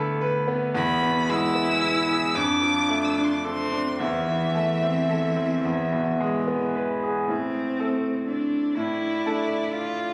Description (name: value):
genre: classical, slow romantic movement for piano trio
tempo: 36-42 BPM (dotted quarters)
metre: 6/8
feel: rubato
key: A minor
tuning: A4 = 439 Hz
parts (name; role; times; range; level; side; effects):
- bright concert grand piano; accompaniment; 0.0-10.1 s; D2 to B5; -28 LUFS; equal; none
- warm cello; second line; 0.7-10.1 s; E3 to F4; -30 LUFS; equal; none
- rich violin; melody; 0.8-10.1 s; D5 to E6; -29 LUFS; equal; none
room: moderate scoring stage reverb, RT60 2.1 s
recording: recorded on a phone in the room, club reverb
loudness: -24 LUFS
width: mono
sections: 0.0-7.3 A section; 7.3-10.1 B section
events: none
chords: 0.0 Bm7/D; 0.8 E; 2.4 Dm/F; 4.0 Am/E; 5.6 E; 7.3 Am; 8.8 D5/A